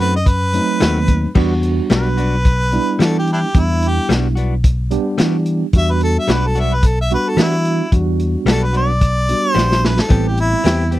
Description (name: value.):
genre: straight-eighth soul blues.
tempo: 110 BPM.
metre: 4/4.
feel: straight.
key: E minor.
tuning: A4 = 440 Hz.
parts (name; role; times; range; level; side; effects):
warm harmonica; melody; 0.0-10.9 s; D4 to E5; -20 LUFS; equal; none.
tine electric piano; accompaniment; 0.0-11.0 s; F#3 to G4; -21 LUFS; right 3 dB; medium stereo tremolo.
direct-recorded clean electric guitar; stabs; 0.0-11.0 s; D#3 to G4; -22 LUFS; left 5 dB; none.
fingered electric bass; bass; 0.0-11.0 s; A1 to E3; -17 LUFS; equal; none.
crunchy breakbeat drum kit; drums; 0.3-11.0 s; crash cymbal, hi-hat, kick drum, snare drum; -15 LUFS; equal; none.
room: little or no reverb.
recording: dry, close 1970s-style studio recording.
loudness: -13 LUFS.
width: side -15 dB against mid.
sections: 0.0-1.4 A section; 1.4-11.0 B section.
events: harmonica solo 0.0-1.4; drum fill 9.6-10.1.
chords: 0.0 B7b9; 1.4 Em9; 10.1 Am9.